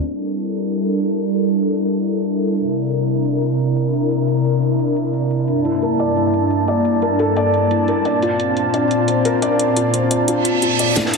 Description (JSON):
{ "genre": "liquid drum and bass", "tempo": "175 BPM", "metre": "4/4", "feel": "straight", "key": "G dorian", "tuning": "A4 = 440 Hz", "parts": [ { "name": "airy breathy pad", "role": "sustained chords", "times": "0.0-11.2 s", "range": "G2 to A5", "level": "-17 LUFS", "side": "equal", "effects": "chorus, sidechain pumping" }, { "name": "drum and bass drum kit", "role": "drums", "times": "0.2-11.2 s", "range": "hi-hat, snare drum", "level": "-24 LUFS", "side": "right 1 dB", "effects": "none" }, { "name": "felt-muted upright piano", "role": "arpeggios", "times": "5.7-11.1 s", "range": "E4 to D5", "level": "-20 LUFS", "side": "left 3 dB", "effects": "digital delay" }, { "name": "reverse cymbal", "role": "sound effects", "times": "10.4-11.0 s", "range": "none", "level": "-20 LUFS", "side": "right 6 dB", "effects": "none" }, { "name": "crunchy breakbeat drum kit", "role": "drums", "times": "11.0-11.2 s", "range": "hi-hat, snare drum", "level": "-24 LUFS", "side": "equal", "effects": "high-pass filter on hats, high-pass filter on snare, high-pass filter on room" }, { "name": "electronic kick drum", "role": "drums", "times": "11.0 s", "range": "none", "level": "-27 LUFS", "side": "right 1 dB", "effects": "high-pass filter on kick, high-pass filter on room" } ], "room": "moderate digital room reverb, RT60 1.3 s, small room ambience", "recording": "dense, heavily limited modern master, low-pass filter", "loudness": "-16 LUFS", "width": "side -4 dB against mid", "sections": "0.0-11.0 A section", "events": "filter sweep on analog synth pad 0.0-11.0; filter sweep 0.0-11.0; reverse cymbal 10.4-11.0; drum fill 11.0", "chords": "0.0 Gm69; 2.6 C7; 5.5 Gm69; 8.1 Bbmaj9", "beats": "| 0.00 0.34 0.68 1.02 | 1.37 1.71 2.05 2.40 | 2.74 3.08 3.42 3.77 | 4.11 4.45 4.80 5.14 | 5.48 5.83 6.17 6.51 | 6.85 7.20 7.54 7.88 | 8.22 8.57 8.91 9.25 | 9.60 9.94 10.28 10.62 | 10.97" }